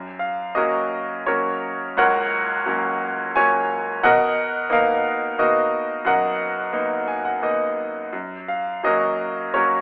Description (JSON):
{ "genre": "classical, lyrical solo piano", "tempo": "86 BPM", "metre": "3/4", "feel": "rubato", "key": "unclear", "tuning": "A4 = 440 Hz", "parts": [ { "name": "bright grand piano", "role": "solo", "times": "0.0-9.8 s", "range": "Db2 to Ab5", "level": "-19 LUFS", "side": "equal", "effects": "none" } ], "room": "moderate recital hall reverb, RT60 1.6 s", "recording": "telephone sound", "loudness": "-19 LUFS", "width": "side -39 dB against mid", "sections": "0.0-9.8 A section", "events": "grand piano fill 6.7-8.1", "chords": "0.0 Gb; 4.0 Bmaj7; 8.1 Gb" }